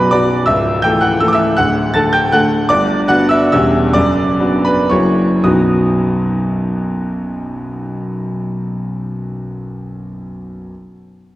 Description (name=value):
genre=classical, romantic triple-time dance for piano with dotted rhythms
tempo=104-176 BPM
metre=3/4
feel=rubato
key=unclear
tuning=A4 = 440 Hz
part: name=clear grand piano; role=solo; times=0.0-10.7 s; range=B0 to A6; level=-13 LUFS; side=equal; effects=none
room=wet concert hall reverb, RT60 2.6 s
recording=worn, warbling old tape, cassette tape, warbly pitch drift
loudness=-12 LUFS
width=side -16 dB against mid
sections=0.0-5.5 A section; 5.5-8.6 B section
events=slowing down 2.1-5.5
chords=0.5 A/C#; 1.6 D; 2.7 Gmaj7; 3.5 C#dim/E; 3.9 Bm/F#; 4.9 F#7; 5.5 B